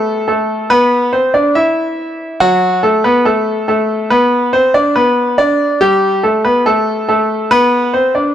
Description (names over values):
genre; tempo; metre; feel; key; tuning
hip hop; 141 BPM; 4/4; half-time; unclear; A4 = 435 Hz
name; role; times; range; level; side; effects
clear concert grand piano; solo; 0.0-8.3 s; F#3 to E5; -10 LUFS; equal; none
room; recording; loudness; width
light reverb, small room ambience; dry, gritty hardware recording; -10 LUFS; side -10 dB against mid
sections
0.0-8.3 A section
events
none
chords
0.0 Am; 2.4 Bm; 5.8 Am